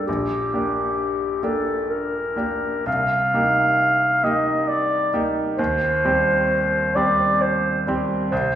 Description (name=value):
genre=classical, romantic duo for clarinet and grand piano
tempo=66 BPM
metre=3/4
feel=rubato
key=unclear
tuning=A4 = 440 Hz
part: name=warm clarinet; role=melody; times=0.0-8.6 s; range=G4 to F5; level=-20 LUFS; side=equal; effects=none
part: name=bright grand piano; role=accompaniment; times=0.0-8.6 s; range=Bb1 to G4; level=-24 LUFS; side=right 1 dB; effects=none
room=wet recital hall reverb, RT60 1.4 s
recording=recorded in a church or concert hall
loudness=-18 LUFS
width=side -10 dB against mid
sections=0.0-8.6 A section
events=none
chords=0.1 Gm/Bb; 2.9 Cm7; 5.6 Cm/Eb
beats=| 0.07 0.98 1.89 | 2.87 3.79 4.69 | 5.58 6.50 7.41 | 8.31